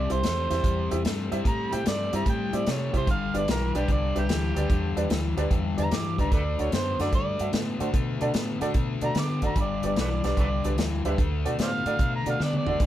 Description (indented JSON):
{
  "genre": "electric blues shuffle",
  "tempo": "148 BPM",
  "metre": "4/4",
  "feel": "swing 67% on 8ths",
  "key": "G major",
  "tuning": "A4 = 444 Hz",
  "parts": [
    { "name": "overdriven harmonica", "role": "melody", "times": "0.0-12.8 s", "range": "G4 to D6", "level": "-30 LUFS", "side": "right 2 dB", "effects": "none" },
    { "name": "biting overdriven guitar", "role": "riff", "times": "0.0-12.9 s", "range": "G2 to B3", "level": "-31 LUFS", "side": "left 5 dB", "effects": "none" },
    { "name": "deep dub fingered electric bass", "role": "bass", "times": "0.0-12.9 s", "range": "F#1 to D3", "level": "-29 LUFS", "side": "equal", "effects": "none" },
    { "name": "clear upright piano", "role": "accompaniment", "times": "0.1-12.7 s", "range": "D4 to E5", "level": "-31 LUFS", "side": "right 3 dB", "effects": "none" },
    { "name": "warm soul drum kit", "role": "drums", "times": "0.1-12.9 s", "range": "hi-hat, kick drum, snare drum, toms", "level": "-27 LUFS", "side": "equal", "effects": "none" }
  ],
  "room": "moderate studio reverb, RT60 0.6 s",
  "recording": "band playing live in one room",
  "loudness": "-23 LUFS",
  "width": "side -12 dB against mid",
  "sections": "0.0-12.8 A section",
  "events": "drum fill 12.4-12.8",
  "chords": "0.0 C; 3.1 G; 6.3 D; 9.6 G; 11.2 D"
}